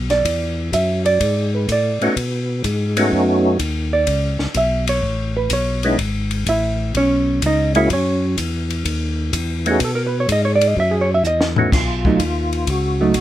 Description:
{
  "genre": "soul jazz organ trio",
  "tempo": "126 BPM",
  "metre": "4/4",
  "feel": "swing 68% on 8ths",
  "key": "B mixolydian",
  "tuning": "A4 = 439 Hz",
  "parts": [
    { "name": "tonewheel organ", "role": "bass", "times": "0.0-13.2 s", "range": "G#1 to B2", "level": "-20 LUFS", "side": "left 1 dB", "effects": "overdrive, chorus vibrato, stopped rotary speaker" },
    { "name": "hollow-body jazz guitar", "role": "accompaniment", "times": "0.1-13.1 s", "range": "F#3 to E5", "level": "-18 LUFS", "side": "right 2 dB", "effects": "none" },
    { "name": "compact cocktail drum kit", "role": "drums", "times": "0.1-13.2 s", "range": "crash cymbal, hi-hat, kick drum, ride cymbal, snare drum, toms", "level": "-25 LUFS", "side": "left 2 dB", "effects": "none" },
    { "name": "percussive tonewheel organ", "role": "melody", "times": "2.0-13.2 s", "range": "G#3 to F#4", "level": "-18 LUFS", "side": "equal", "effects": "slow rotary speaker, chorus vibrato" }
  ],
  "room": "light reverb",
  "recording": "none",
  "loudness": "-16 LUFS",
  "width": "side -13 dB against mid",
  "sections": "0.0-11.7 A section; 11.7-13.2 B section",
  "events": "hollow-body jazz guitar solo 0.0-11.7; drum fill 11.2-11.7",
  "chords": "0.0 B7; 4.1 C#m7; 7.9 F#5; 9.8 G#madd11; 10.8 F#5; 11.7 B7",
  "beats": "| 0.25 0.73 1.21 1.69 | 2.16 2.64 3.12 3.60 | 4.08 4.55 5.03 5.51 | 5.99 6.47 6.95 7.42 | 7.90 8.38 8.86 9.33 | 9.81 10.29 10.76 11.24 | 11.72 12.19 12.67 13.15"
}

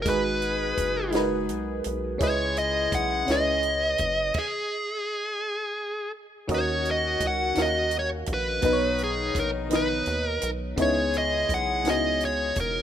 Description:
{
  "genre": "slow six-eight R&B",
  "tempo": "56 BPM (dotted quarters)",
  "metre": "6/8",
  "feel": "straight",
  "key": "unclear",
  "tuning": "A4 = 440 Hz",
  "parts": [
    { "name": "dark smooth lead guitar", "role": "melody", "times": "0.0-12.8 s", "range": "G#4 to F#5", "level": "-26 LUFS", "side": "equal", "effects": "overdrive" },
    { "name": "FM electric piano", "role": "accompaniment", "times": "0.0-12.8 s", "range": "B2 to F#5", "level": "-28 LUFS", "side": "equal", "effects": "chorus, phaser" },
    { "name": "rubbery square bass", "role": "bass", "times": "0.0-12.8 s", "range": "E1 to D#2", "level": "-33 LUFS", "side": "equal", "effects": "none" },
    { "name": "warm horn section", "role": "stabs", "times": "0.1-12.5 s", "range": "D#3 to G#4", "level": "-35 LUFS", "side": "left 5 dB", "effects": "tape echo" },
    { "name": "compact cocktail drum kit", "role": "drums", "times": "0.1-12.7 s", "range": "crash cymbal, hi-hat, kick drum, snare drum", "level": "-30 LUFS", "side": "right 1 dB", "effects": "none" }
  ],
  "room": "studio reverb",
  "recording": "rough home demo mix",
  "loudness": "-23 LUFS",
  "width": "side -10 dB against mid",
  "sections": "0.0-6.5 A section; 6.5-12.8 A section",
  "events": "stop 4.3-6.5",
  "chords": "0.1 G#m9; 2.2 C#m9; 4.3 N.C.; 6.5 D#m7; 8.6 Bmaj7; 10.8 C#m9",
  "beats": "| 0.06 1.13 | 2.21 3.28 | 4.35 5.42 | 6.49 7.56 | 8.63 9.71 | 10.78 11.85"
}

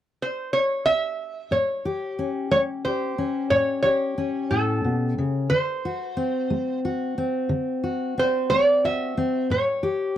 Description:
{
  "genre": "acoustic country blues, solo or duo",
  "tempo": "60 BPM (dotted quarters)",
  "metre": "12/8",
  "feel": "straight",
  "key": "A mixolydian",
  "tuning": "A4 = 435 Hz",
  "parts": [
    { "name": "lap resonator guitar", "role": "melody", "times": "0.2-10.1 s", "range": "A4 to E5", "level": "-22 LUFS", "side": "right 1 dB", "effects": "none" },
    { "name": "fingerpicked steel-string acoustic guitar", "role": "accompaniment", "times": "1.5-10.2 s", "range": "A2 to G4", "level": "-25 LUFS", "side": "left 2 dB", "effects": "none" }
  ],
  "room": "light reverb",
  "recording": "dry, close 1970s-style studio recording",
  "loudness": "-22 LUFS",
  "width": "side -11 dB against mid",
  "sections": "0.0-1.5 A section; 1.5-10.2 B section",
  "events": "none",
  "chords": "0.0 N.C.; 1.5 A7; 5.5 D7; 9.5 A7",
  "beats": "0.50 | 1.50 2.50 3.50 4.50 | 5.50 6.50 7.50 8.49 | 9.49"
}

